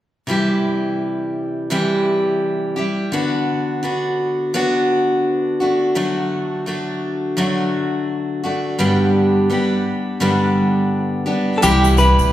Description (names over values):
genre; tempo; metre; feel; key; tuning
acoustic pop; 85 BPM; 4/4; swing 60% on 16ths; unclear; A4 = 440 Hz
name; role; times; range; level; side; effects
picked steel-string acoustic guitar; accompaniment; 0.3-12.3 s; G2 to G4; -17 LUFS; equal; none
direct-recorded clean electric guitar; melody; 11.6-12.3 s; G4 to B4; -16 LUFS; equal; none
upright bass; bass; 11.6-12.3 s; C2; -15 LUFS; equal; none
tube shaker; percussion; 11.6-12.3 s; none; -29 LUFS; left 7 dB; none
room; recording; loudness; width
wet recital hall reverb, RT60 1.6 s; recorded in a church or concert hall; -16 LUFS; side -13 dB against mid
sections
0.3-11.6 A section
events
none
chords
0.3 C; 3.1 Bm/D; 5.6 D; 8.8 G; 11.6 C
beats
| 0.29 1.00 1.71 2.42 | 3.13 3.84 4.55 5.25 | 5.96 6.67 7.38 8.09 | 8.80 9.51 10.22 10.92 | 11.63